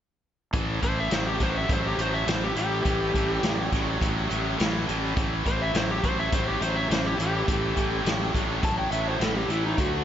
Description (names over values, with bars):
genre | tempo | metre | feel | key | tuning
blues rock power trio and southern rock | 104 BPM | 4/4 | straight | A mixolydian | A4 = 440 Hz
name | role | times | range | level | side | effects
overdriven tonewheel organ | sustained chords | 0.5-10.0 s | F#3 to C#5 | -39 LUFS | right 3 dB | none
tight distorted guitar | riff | 0.5-10.0 s | A2 to A3 | -28 LUFS | equal | distortion, slapback echo
fuzz fingered electric bass | bass | 0.5-10.0 s | A1 to D2 | -30 LUFS | equal | overdrive
vintage drum kit | drums | 0.5-9.9 s | hi-hat, kick drum, snare drum | -28 LUFS | equal | none
overdriven slide guitar | melody | 0.8-10.0 s | D#4 to A5 | -29 LUFS | left 1 dB | slapback echo
room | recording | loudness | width
moderate lush hall reverb, RT60 2.6 s | big arena sound, nothing above 7.7 kHz | -23 LUFS | side -10 dB against mid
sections
0.5-10.0 A section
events
none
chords
0.5 A7